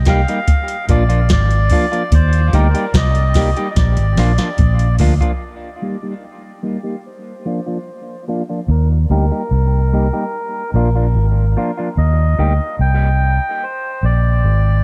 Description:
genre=dub reggae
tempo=73 BPM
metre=4/4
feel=straight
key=Eb major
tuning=A4 = 441 Hz
part: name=vintage muted fingered electric bass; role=bass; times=0.0-14.8 s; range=Ab1 to Eb2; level=-16 LUFS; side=equal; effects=none
part: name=melodica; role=melody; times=0.1-14.8 s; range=Bb4 to G5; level=-26 LUFS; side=equal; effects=low-pass filter, dub echo
part: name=clean electric guitar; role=accompaniment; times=0.1-12.5 s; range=F3 to G4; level=-25 LUFS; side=equal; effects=low-pass filter, dub echo
part: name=soft vintage rhythm box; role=drums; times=0.1-5.4 s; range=hi-hat, kick drum, snare drum, toms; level=-18 LUFS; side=equal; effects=overdrive
room=digital ambience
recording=echo-heavy mix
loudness=-16 LUFS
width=mono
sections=0.0-5.4 A section; 5.4-14.8 B section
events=drum fill 3.8-5.4; break 5.4-8.7; filter sweep 5.4-14.8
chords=0.5 Bb; 2.1 Eb; 3.8 Bb; 5.4 Eb; 7.0 Bb; 8.7 Eb; 10.3 Bb; 12.0 Eb; 13.6 Bb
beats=0.47 1.30 | 2.12 2.94 3.76 4.58 | 5.40 6.22 7.04 7.86 | 8.69 9.51 10.33 11.15 | 11.97 12.79 13.62 14.44

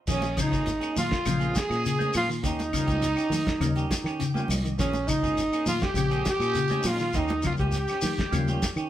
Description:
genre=afrobeat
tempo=102 BPM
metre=4/4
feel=straight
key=Bb dorian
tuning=A4 = 440 Hz
part: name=breathy alto saxophone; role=melody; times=0.1-8.7 s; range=Db4 to Ab4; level=-29 LUFS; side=equal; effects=none
part: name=growling trumpet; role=second line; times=0.1-8.8 s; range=Db4 to Ab4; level=-34 LUFS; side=right 4 dB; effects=none
part: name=mellow electric guitar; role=arpeggios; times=0.1-8.6 s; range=Db3 to Eb3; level=-31 LUFS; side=left 4 dB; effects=none
part: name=clean electric guitar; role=stabs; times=0.1-8.9 s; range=F3 to Ab4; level=-36 LUFS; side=right 5 dB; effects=spring reverb
part: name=fingered electric bass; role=bass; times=0.1-8.9 s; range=Ab1 to Eb3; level=-31 LUFS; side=equal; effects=none
part: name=cloth-damped thuddy drum kit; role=drums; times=0.1-8.8 s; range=crash cymbal, hi-hat, kick drum, snare drum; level=-32 LUFS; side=equal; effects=none
part: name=shekere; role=percussion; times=0.1-8.9 s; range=none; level=-36 LUFS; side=left 2 dB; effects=none
part: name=congas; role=percussion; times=0.2-8.8 s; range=none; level=-35 LUFS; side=right 2 dB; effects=none
part: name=percussive tonewheel organ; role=accompaniment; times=0.4-8.6 s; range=G3 to G5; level=-36 LUFS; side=equal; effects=slow rotary speaker, chorus vibrato
part: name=claves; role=percussion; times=0.4-8.9 s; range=none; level=-43 LUFS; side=left 4 dB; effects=none
room=moderate studio reverb, RT60 0.8 s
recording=band playing live in one room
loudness=-24 LUFS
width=side -12 dB against mid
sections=0.1-8.9 A section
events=tonewheel organ fill 3.9-4.8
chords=0.1 Bbm7; 2.4 Eb7; 4.8 Bbm7; 7.1 Eb7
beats=| 0.08 0.67 1.26 1.85 | 2.44 3.02 3.61 4.20 | 4.79 5.38 5.97 6.56 | 7.15 7.74 8.33

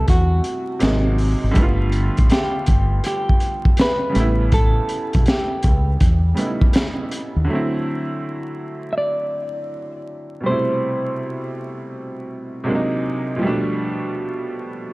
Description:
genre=lo-fi hip hop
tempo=81 BPM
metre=4/4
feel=swing 65% on 16ths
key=A dorian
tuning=A4 = 440 Hz
part: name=semi-hollow electric guitar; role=melody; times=0.0-13.0 s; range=F#4 to E5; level=-24 LUFS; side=equal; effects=spring reverb, low-pass filter, tape echo
part: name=bright upright piano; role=accompaniment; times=0.0-14.9 s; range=Bb2 to F4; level=-24 LUFS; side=right 1 dB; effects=cassette tape, low-pass filter
part: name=deep dub fingered electric bass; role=bass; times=0.0-7.5 s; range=G1 to E2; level=-18 LUFS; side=equal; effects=none
part: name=crunchy breakbeat drum kit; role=drums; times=0.1-7.3 s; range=hi-hat, kick drum, snare drum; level=-18 LUFS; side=equal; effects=none
room=light reverb, small room reverb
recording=dark, warm production, vinyl crackle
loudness=-17 LUFS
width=side -22 dB against mid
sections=0.0-7.5 A section; 7.5-14.9 B section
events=none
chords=0.0 Am7; 0.8 G#9; 1.6 G7; 4.2 A7; 7.5 D7; 10.5 Am7; 12.7 G#9; 13.4 G7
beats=0.08 0.82 | 1.56 2.31 3.05 3.79 | 4.53 5.27 6.01 6.75 | 7.49 8.23 8.97 9.71 | 10.45 11.19 11.94 12.68 | 13.42 14.16 14.90

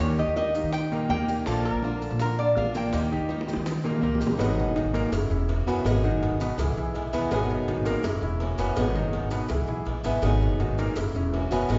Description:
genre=latin, Cuban son and guajira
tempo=164 BPM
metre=4/4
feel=straight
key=G# minor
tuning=A4 = 439 Hz
part: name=lap resonator guitar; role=melody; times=0.0-4.0 s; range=A4 to G5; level=-31 LUFS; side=equal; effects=none
part: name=picked swing-style acoustic guitar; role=accompaniment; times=0.0-11.8 s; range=D#3 to G#4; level=-33 LUFS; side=equal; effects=none
part: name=clear grand piano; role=arpeggios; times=0.0-11.8 s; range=A#2 to B4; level=-32 LUFS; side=equal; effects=none
part: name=upright bass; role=bass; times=0.0-11.8 s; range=E1 to D#3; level=-30 LUFS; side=equal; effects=none
part: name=maracas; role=percussion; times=0.0-11.8 s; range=none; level=-50 LUFS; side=equal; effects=none
part: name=bongos and cowbell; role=percussion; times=0.2-11.8 s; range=none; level=-37 LUFS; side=equal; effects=none
room=wet recital hall reverb, RT60 1.5 s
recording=recorded in a church or concert hall, nothing above 7.6 kHz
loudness=-26 LUFS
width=mono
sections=0.0-4.4 A section; 4.4-11.8 B section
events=drum fill 3.3-4.4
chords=0.0 D#; 1.5 A#; 2.9 D#; 4.4 G#m7; 5.1 F#7; 5.9 G#m7; 6.6 C#m7; 7.3 G#m7; 8.0 F#7; 8.8 G#m7; 9.5 C#m7; 10.2 G#m7; 11.0 F#7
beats=| 0.00 0.37 0.73 1.10 | 1.47 1.83 2.20 2.56 | 2.93 3.29 3.66 4.03 | 4.39 4.76 5.12 5.49 | 5.85 6.22 6.58 6.95 | 7.31 7.68 8.04 8.41 | 8.77 9.14 9.50 9.87 | 10.23 10.60 10.96 11.33 | 11.70

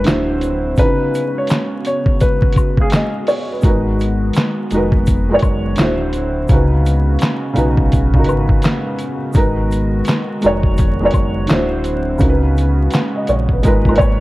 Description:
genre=lo-fi hip hop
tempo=84 BPM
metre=4/4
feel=swing 65% on 16ths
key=unclear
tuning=A4 = 440 Hz
part: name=warm upright piano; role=melody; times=0.0-3.1 s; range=G#4 to C#5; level=-21 LUFS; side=left 2 dB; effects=low-pass filter, tape echo
part: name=felt-muted upright piano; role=accompaniment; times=0.0-14.2 s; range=C#3 to F#5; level=-18 LUFS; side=right 1 dB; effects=cassette tape, low-pass filter
part: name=hollow soft pad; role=sustained chords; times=0.0-14.2 s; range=B2 to F#4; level=-25 LUFS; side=left 1 dB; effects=chorus, low-pass filter
part: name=sub bass with octave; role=bass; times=0.0-14.2 s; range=D1 to C#2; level=-18 LUFS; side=equal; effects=none
part: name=lo-fi sampler-style drum kit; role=drums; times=0.0-14.2 s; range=handclaps, hi-hat, kick drum, snare drum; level=-16 LUFS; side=equal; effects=none
part: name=egg shaker and woodblock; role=percussion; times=0.1-14.2 s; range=none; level=-33 LUFS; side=left 5 dB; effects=none
room=light reverb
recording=dark, warm production, vinyl crackle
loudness=-13 LUFS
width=side -18 dB against mid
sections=0.0-14.2 A section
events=none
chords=0.1 D9; 0.8 C#7sus4; 3.6 G#m7; 5.8 D9; 6.5 C#7sus4; 9.4 G#m7; 11.5 D9; 12.2 C#7sus4; 13.6 G#m69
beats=0.07 | 0.78 1.50 2.21 2.92 | 3.64 4.35 5.07 5.78 | 6.50 7.21 7.92 8.64 | 9.35 10.07 10.78 11.50 | 12.21 12.93 13.64

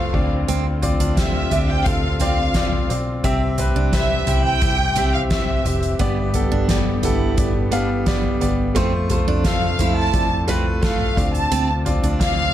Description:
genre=piano-driven pop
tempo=87 BPM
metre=4/4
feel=straight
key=C major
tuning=A4 = 440 Hz
part: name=warm studio violin section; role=melody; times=0.0-12.5 s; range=E5 to A5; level=-24 LUFS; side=right 1 dB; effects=none
part: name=clear grand piano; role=accompaniment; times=0.0-12.5 s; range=G2 to G5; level=-23 LUFS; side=left 1 dB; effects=none
part: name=dark studio string section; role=sustained chords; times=0.0-12.5 s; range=C3 to G4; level=-32 LUFS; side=left 2 dB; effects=none
part: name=vintage muted fingered electric bass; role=bass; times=0.0-12.5 s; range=F1 to F2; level=-23 LUFS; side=equal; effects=none
part: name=soft-mallet drum kit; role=drums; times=0.1-12.4 s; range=crash cymbal, hi-hat, kick drum, snare drum, toms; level=-22 LUFS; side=equal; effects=none
part: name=picked steel-string acoustic guitar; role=riff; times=0.5-12.2 s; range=B3 to E4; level=-30 LUFS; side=right 8 dB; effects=none
room=light reverb, small room ambience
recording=dark, warm production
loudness=-17 LUFS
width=side -12 dB against mid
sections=0.0-12.5 A section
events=none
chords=0.1 Dm7; 3.2 C; 6.0 G; 8.8 F; 11.2 Dm7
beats=| 0.49 1.18 1.86 2.55 | 3.24 3.93 4.62 5.31 | 6.00 6.69 7.38 8.07 | 8.76 9.45 10.14 10.83 | 11.52 12.21

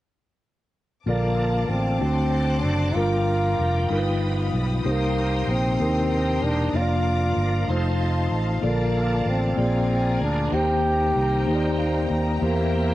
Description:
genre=slow gospel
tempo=64 BPM (dotted quarters)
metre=6/8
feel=straight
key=Bb major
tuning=A4 = 441 Hz
part: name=clear trombone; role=melody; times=1.1-12.9 s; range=Bb3 to G4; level=-26 LUFS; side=equal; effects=plate reverb, analog delay
part: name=mellow tine electric piano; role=accompaniment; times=1.1-12.9 s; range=G2 to Bb5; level=-26 LUFS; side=left 1 dB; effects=medium stereo tremolo
part: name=bright tonewheel organ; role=sustained chords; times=1.1-12.9 s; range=Eb3 to Bb4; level=-34 LUFS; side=right 2 dB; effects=slow rotary speaker, chorus vibrato, plate reverb
part: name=warm studio string section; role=sustained chords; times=1.1-12.9 s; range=Eb4 to D#6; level=-33 LUFS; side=left 3 dB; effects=plate reverb
part: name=fingered electric bass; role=bass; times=1.1-12.9 s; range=E1 to E2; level=-24 LUFS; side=equal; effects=none
room=moderate studio reverb, RT60 0.5 s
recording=home recording on cassette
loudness=-20 LUFS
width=side -15 dB against mid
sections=1.1-12.9 A section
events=tine electric piano fill 7.7-8.6, 11.5-12.4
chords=1.1 Bbmaj7; 2.0 D7; 3.0 Gm7; 3.9 Gaug7; 4.8 Cm7; 6.7 Bb/F; 7.7 F7; 8.6 Bbmaj7; 9.6 Bb7; 10.5 Eb6; 12.4 C7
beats=| 1.07 2.01 | 2.96 3.90 | 4.85 5.79 | 6.74 7.68 | 8.63 9.57 | 10.52 11.47 | 12.41

